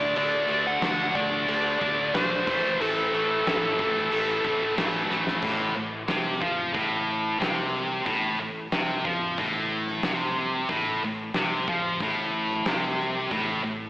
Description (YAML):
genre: hard rock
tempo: 91 BPM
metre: 4/4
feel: straight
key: A dorian, A minor from 5.4 s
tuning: A4 = 437 Hz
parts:
  - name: dark smooth lead guitar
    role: melody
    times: 0.0-4.7 s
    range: A4 to F#5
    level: -26 LUFS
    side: equal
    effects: overdrive, slapback echo
  - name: high-gain distorted guitar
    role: riff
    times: 0.0-13.9 s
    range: A2 to D4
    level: -25 LUFS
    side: equal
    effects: distortion, slapback echo
  - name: fingered electric bass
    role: bass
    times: 0.0-13.9 s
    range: A1 to F2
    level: -39 LUFS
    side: equal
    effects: none
  - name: huge arena drum kit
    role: drums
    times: 0.2-13.5 s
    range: crash cymbal, hi-hat, kick drum, snare drum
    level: -31 LUFS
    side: equal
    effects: none
room: wet lush hall reverb, RT60 2.4 s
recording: big arena sound, AM radio sound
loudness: -23 LUFS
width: side -18 dB against mid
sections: 0.0-5.4 A section; 5.4-13.9 B section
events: drum fill 5.1-5.4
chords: 0.0 D5; 2.5 A5; 5.4 Am